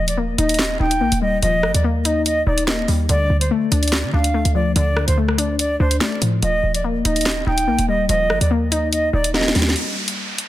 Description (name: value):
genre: hip hop, drill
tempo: 144 BPM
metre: 4/4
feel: half-time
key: unclear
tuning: A4 = 438 Hz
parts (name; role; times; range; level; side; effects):
- reedy concert flute; melody; 0.0-9.5 s; C5 to G5; -22 LUFS; right 1 dB; none
- warbly dusty pluck; accompaniment; 0.0-9.8 s; D3 to Eb4; -23 LUFS; left 5 dB; chorus
- short 808-style bass; bass; 0.0-9.8 s; Eb1 to D3; -20 LUFS; right 1 dB; none
- drill drum kit; drums; 0.1-10.5 s; handclaps, hi-hat, rim click, snare drum; -22 LUFS; equal; overdrive
- downlifter; sound effects; 9.8-10.5 s; none; -25 LUFS; right 2 dB; none
room: digital ambience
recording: dense, heavily limited modern master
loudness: -16 LUFS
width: side -14 dB against mid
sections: 0.0-9.8 A section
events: drum fill 9.3-9.8; break 9.8-10.5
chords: 0.0 Ebadd9; 3.1 Dm; 6.4 Ebadd9; 9.8 N.C.